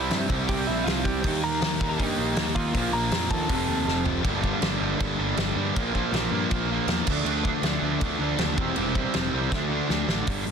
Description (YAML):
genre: punk rock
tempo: 159 BPM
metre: 4/4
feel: straight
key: G dorian from 4.2 s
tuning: A4 = 440 Hz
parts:
  - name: lightly driven lead guitar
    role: melody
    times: 0.0-4.0 s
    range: E4 to Bb5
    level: -31 LUFS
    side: equal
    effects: ping-pong delay
  - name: distorted electric guitar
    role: riff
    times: 0.0-10.5 s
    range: F2 to Eb4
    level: -29 LUFS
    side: right 14 dB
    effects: distortion
  - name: fuzz guitar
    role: riff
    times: 0.0-10.3 s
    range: F2 to Eb4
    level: -32 LUFS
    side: equal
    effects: distortion
  - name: sludgy distorted guitar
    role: riff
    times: 0.0-10.5 s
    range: F2 to F#4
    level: -31 LUFS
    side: left 13 dB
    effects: overdrive
  - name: fuzz picked electric bass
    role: bass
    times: 0.0-10.5 s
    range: E1 to G2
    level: -31 LUFS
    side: equal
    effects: overdrive
  - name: loose indie drum kit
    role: drums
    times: 0.1-10.5 s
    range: crash cymbal, hi-hat, kick drum, snare drum, toms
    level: -29 LUFS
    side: equal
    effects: none
room: little or no reverb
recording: dense, heavily limited modern master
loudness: -23 LUFS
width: side -6 dB against mid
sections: 0.0-4.2 A section; 4.2-10.3 B section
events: drum fill 3.9-4.2, 9.5-10.3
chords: 0.0 C; 1.2 Eb; 2.7 Bb; 3.5 F; 4.2 Gm; 5.8 Bb; 7.1 Dm; 8.6 C/E; 9.5 D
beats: 0.10 0.48 0.85 | 1.23 1.61 1.99 2.36 | 2.74 3.12 3.49 3.87 | 4.24 4.62 5.00 5.37 | 5.75 6.13 6.50 6.88 | 7.26 7.63 8.01 8.38 | 8.76 9.14 9.51 9.89 | 10.27